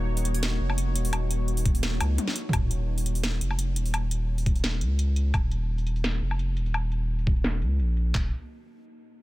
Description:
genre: half-time drum and bass.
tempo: 171 BPM.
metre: 4/4.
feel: swing 53% on 16ths, half-time.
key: Eb minor.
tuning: A4 = 441 Hz.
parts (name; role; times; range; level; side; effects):
deep dark ambient pad; sustained chords; 0.0-2.5, 8.3 s; Bb3 to Db5; -37 LUFS; left 1 dB; chorus, built-in reverb, vintage 12-bit sampler grit, sidechain pumping.
saturated sub bass; bass; 0.0-8.3 s; Eb1 to Db2; -26 LUFS; equal; none.
drum and bass drum kit; drums; 0.2-8.0 s; hi-hat, snare drum, toms, woodblock; -32 LUFS; equal; low-pass filter on hats, low-pass filter on snare, low-pass filter on perc, low-pass filter on toms, low-pass filter on room.
boom bap sampler-style drum kit; drums; 1.7-8.2 s; handclaps, kick drum, toms; -25 LUFS; equal; none.
room: little or no reverb.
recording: none.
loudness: -24 LUFS.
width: side -18 dB against mid.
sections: 0.0-2.5 A section; 2.5-8.1 B section; 8.1-9.2 C section.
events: drop 0.0-2.5; drum fill 2.2-2.5; filter sweep on drum 2.5-8.1.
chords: 0.0 Ebm; 2.5 Eb5; 8.1 Ebm.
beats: 0.08 0.43 0.78 | 1.13 1.48 1.83 2.18 | 2.53 2.88 3.23 3.58 | 3.94 4.29 4.64 4.99 | 5.34 5.69 6.04 6.39 | 6.74 7.09 7.45 7.80 | 8.15.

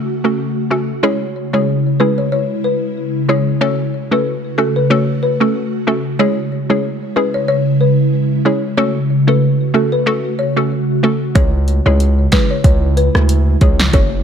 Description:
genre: dancehall.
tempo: 93 BPM.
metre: 4/4.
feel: swing 56% on 16ths.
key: C# minor.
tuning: A4 = 440 Hz.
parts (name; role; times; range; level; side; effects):
hollow square pluck; accompaniment; 0.0-14.1 s; G#3 to A4; -18 LUFS; right 1 dB; chorus, sidechain pumping.
ethereal airy pad; sustained chords; 0.0-14.2 s; C#3 to F#4; -18 LUFS; equal; ensemble chorus, built-in reverb, sidechain pumping.
folk marimba with medium mallets; melody; 1.0-14.1 s; A4 to C#5; -20 LUFS; left 4 dB; ping-pong delay.
hard-hitting 808-style bass; bass; 11.4-14.2 s; F#1 to D2; -13 LUFS; equal; none.
deep house drum kit; drums; 11.4-14.1 s; hi-hat, kick drum, rim click, snare drum; -13 LUFS; right 1 dB; none.
room: digital ambience.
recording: none.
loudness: -13 LUFS.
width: side -7 dB against mid.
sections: 0.0-1.0 A section; 1.0-14.2 B section.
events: filter sweep 0.0-1.0.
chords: 0.0 F#m; 1.0 C#m; 3.6 F#m; 6.2 C#m; 8.8 F#m; 11.4 C#m.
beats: 0.39 | 1.03 1.68 2.32 2.97 | 3.61 4.26 4.90 5.55 | 6.19 6.84 7.48 8.13 | 8.77 9.42 10.06 10.71 | 11.35 12.00 12.64 13.29 | 13.94.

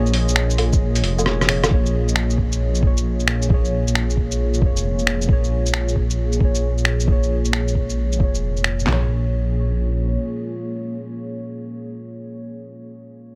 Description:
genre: future garage.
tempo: 134 BPM.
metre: 4/4.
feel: swing 65% on 16ths.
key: Bb minor.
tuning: A4 = 440 Hz.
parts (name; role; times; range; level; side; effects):
muted felt-like synth keys; accompaniment; 0.0-13.4 s; Bb2 to Db5; -31 LUFS; equal; chorus, sidechain pumping, low-pass filter, tape echo.
deep dark ambient pad; sustained chords; 0.0-12.2 s; Bb3 to Eb5; -31 LUFS; equal; chorus, built-in reverb, sidechain pumping.
dark detuned saw bass; bass; 0.0-10.2 s; F1 to Bb1; -23 LUFS; equal; tube saturation, sidechain pumping.
lo-fi sampler-style drum kit; drums; 0.1-8.9 s; finger snaps, hi-hat, rim click, shaker, woodblock; -25 LUFS; equal; none.
lo-fi sampler-style drum kit; drums; 0.7-9.0 s; handclaps, kick drum, snare drum, toms; -21 LUFS; equal; none.
room: light reverb.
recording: none.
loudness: -20 LUFS.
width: mono.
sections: 0.0-1.7 A section; 1.7-8.9 B section; 8.9-12.5 C section.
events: kick drops out 0.8-1.7; drum fill 1.3-1.7; filter sweep on detuned saw bass 1.7-8.9; filter sweep on synth keys 1.7-8.9.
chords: 0.0 Bbm7.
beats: 0.36 0.81 1.26 | 1.71 2.15 2.60 3.05 | 3.50 3.95 4.39 4.84 | 5.29 5.74 6.18 6.63 | 7.08 7.53 7.98 8.42 | 8.87 9.32 9.77 10.21 | 10.66 11.11 11.56 12.01.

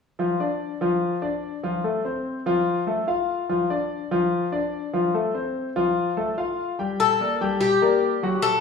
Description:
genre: latin.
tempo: 146 BPM.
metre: 4/4.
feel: straight.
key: G minor.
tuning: A4 = 440 Hz.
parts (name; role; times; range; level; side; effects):
clear concert grand piano; arpeggios; 0.2-8.6 s; F3 to G5; -23 LUFS; left 2 dB; none.
Cuban tres; melody; 7.0-8.6 s; G4 to A4; -20 LUFS; left 5 dB; none.
room: wet stone room reverb, RT60 1.1 s.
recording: band playing live in one room, studio reverb.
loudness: -22 LUFS.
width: side -5 dB against mid.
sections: 0.2-6.8 A section; 6.8-8.6 B section.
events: none.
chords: 0.2 Dm/F; 1.8 F; 3.5 Dm/F; 5.1 F; 6.8 Gm.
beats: | 0.20 0.61 1.02 1.43 | 1.84 2.25 2.67 3.08 | 3.49 3.90 4.31 4.73 | 5.14 5.55 5.96 6.37 | 6.79 7.20 7.61 8.02 | 8.44.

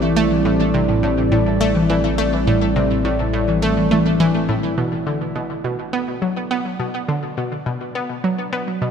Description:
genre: ambient, sequencer-driven space music.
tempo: 104 BPM.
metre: 4/4.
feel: straight.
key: A minor, B minor from 4.8 s.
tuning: A4 = 440 Hz.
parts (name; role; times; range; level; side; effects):
sweeping resonant pad; sustained chords; 0.0-8.9 s; G3 to D5; -22 LUFS; equal; chorus.
concert harp; arpeggios; 0.0-7.7 s; A2 to A4; -22 LUFS; equal; auto-pan, tape echo.
analog pluck; riff; 0.0-8.9 s; A2 to B3; -21 LUFS; right 1 dB; chorus, tape echo.
analog drone; bass; 0.0-4.8 s; A1; -26 LUFS; equal; chorus.
room: wet plate reverb, RT60 3.6 s.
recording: echo-heavy mix.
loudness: -17 LUFS.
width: side -7 dB against mid.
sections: 0.0-4.8 A section; 4.8-8.9 B section.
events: none.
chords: 0.0 Am7; 4.8 Bm7.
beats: | 0.16 0.74 1.32 1.89 | 2.47 3.05 3.62 4.20 | 4.78 5.35 5.93 6.51 | 7.08 7.66 8.24 8.82.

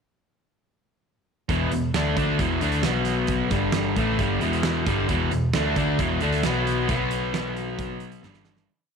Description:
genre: classic rock.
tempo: 134 BPM.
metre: 4/4.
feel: straight.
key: unclear.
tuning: A4 = 440 Hz.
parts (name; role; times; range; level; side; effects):
distorted electric guitar; riff; 1.5-8.7 s; E2 to D4; -27 LUFS; right 11 dB; distortion.
overdriven semi-hollow guitar; riff; 1.5-8.7 s; E2 to D4; -26 LUFS; left 13 dB; none.
hollow-body short-scale picked electric bass; bass; 1.5-8.7 s; E1 to D2; -28 LUFS; equal; none.
huge arena drum kit; drums; 1.5-8.7 s; hi-hat, kick drum, snare drum; -29 LUFS; right 3 dB; none.
room: light reverb, small room ambience.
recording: 1960s-style stereo with parts hard left and right.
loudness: -21 LUFS.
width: side -6 dB against mid.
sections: 1.5-8.7 riff.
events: fade-out 6.9-8.7; drum fill 8.2-8.7.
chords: 1.5 E5; 2.9 B5; 3.5 G5; 4.0 E5; 6.4 B5; 8.2 G5.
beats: | 1.49 1.95 2.40 2.85 | 3.30 3.75 4.20 4.65 | 5.10 5.55 6.00 6.44 | 6.89 7.34 7.79 8.24.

